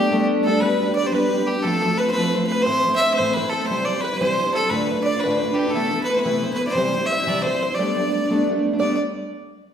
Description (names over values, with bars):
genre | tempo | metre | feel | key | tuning
celtic folk, Celtic jig | 117 BPM (dotted quarters) | 6/8 | straight | G mixolydian | A4 = 439 Hz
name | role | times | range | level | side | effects
clear fiddle | melody | 0.0-9.0 s | G4 to E5 | -23 LUFS | equal | none
open-back banjo | second line | 0.0-9.0 s | G4 to E5 | -29 LUFS | right 2 dB | none
rich fiddle | second line | 0.0-9.0 s | G4 to E5 | -28 LUFS | left 2 dB | none
fingerpicked steel-string acoustic guitar | accompaniment | 0.0-9.0 s | D2 to G4 | -22 LUFS | equal | none
room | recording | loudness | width
wet recital hall reverb, RT60 1.4 s | recorded in a church or concert hall | -18 LUFS | side -8 dB against mid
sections
0.6-8.8 A section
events
none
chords
0.0 Gadd9; 0.6 G; 1.6 F; 2.7 Am; 3.7 C; 4.7 Dm; 5.7 Amadd9/C; 6.8 C; 7.8 Gadd9